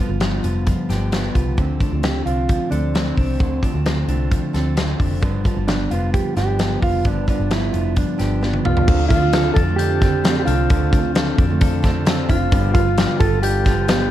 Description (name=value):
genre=jangly indie pop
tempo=132 BPM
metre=4/4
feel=straight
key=D dorian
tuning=A4 = 440 Hz
part: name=picked steel-string acoustic guitar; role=accompaniment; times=0.0-14.1 s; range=G2 to F4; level=-29 LUFS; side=right 8 dB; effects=none
part: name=clean electric guitar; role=arpeggios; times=0.0-14.1 s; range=G2 to A4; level=-24 LUFS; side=left 3 dB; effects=none
part: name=vintage muted picked electric bass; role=bass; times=0.1-14.1 s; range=F1 to F2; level=-22 LUFS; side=equal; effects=none
part: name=big rock drum kit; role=drums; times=0.2-14.0 s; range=crash cymbal, hi-hat, kick drum, snare drum, toms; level=-20 LUFS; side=equal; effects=none
part: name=mellow electric guitar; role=melody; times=2.0-14.1 s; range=C4 to A4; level=-23 LUFS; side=right 4 dB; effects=wide subtle chorus, slapback echo
part: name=glockenspiel with soft plastic mallets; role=second line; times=8.7-14.1 s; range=F6 to A6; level=-28 LUFS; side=left 9 dB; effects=none
part: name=overdriven combo organ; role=accompaniment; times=8.9-14.1 s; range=B3 to A4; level=-28 LUFS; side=left 6 dB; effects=none
room=light reverb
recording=dark, warm production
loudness=-16 LUFS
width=side -12 dB against mid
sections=0.0-8.9 A section; 8.9-14.1 B section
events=drum fill 8.4-8.9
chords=0.0 G7; 1.6 Dm7; 5.2 G7; 8.9 Dm7; 12.5 G7